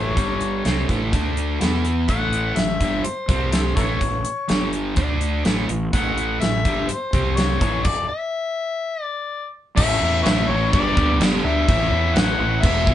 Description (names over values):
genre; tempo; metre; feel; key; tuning
classic rock; 125 BPM; 4/4; straight; unclear; A4 = 441 Hz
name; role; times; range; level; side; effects
overdriven harmonica; melody; 0.0-12.9 s; E4 to F#5; -24 LUFS; left 4 dB; none
overdriven electric guitar; riff; 0.0-12.9 s; G2 to E4; -24 LUFS; equal; none
fuzz fingered electric bass; bass; 0.0-12.9 s; E1 to E2; -24 LUFS; equal; overdrive
gated 80s drum kit; drums; 0.2-12.9 s; crash cymbal, hi-hat, kick drum, snare drum; -22 LUFS; equal; none
room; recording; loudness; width
light reverb; band playing live in one room, nothing above 10.3 kHz; -18 LUFS; side -11 dB against mid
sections
0.0-9.8 A section; 9.8-12.9 B section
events
stop 7.9-9.8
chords
0.2 G5; 0.7 A; 1.1 D5; 1.6 E5; 2.1 A5; 3.3 C5; 3.8 A; 4.5 G5; 5.0 D5; 5.5 A5; 7.1 C5; 7.6 A; 7.9 N.C.; 9.8 A; 10.7 G; 11.7 A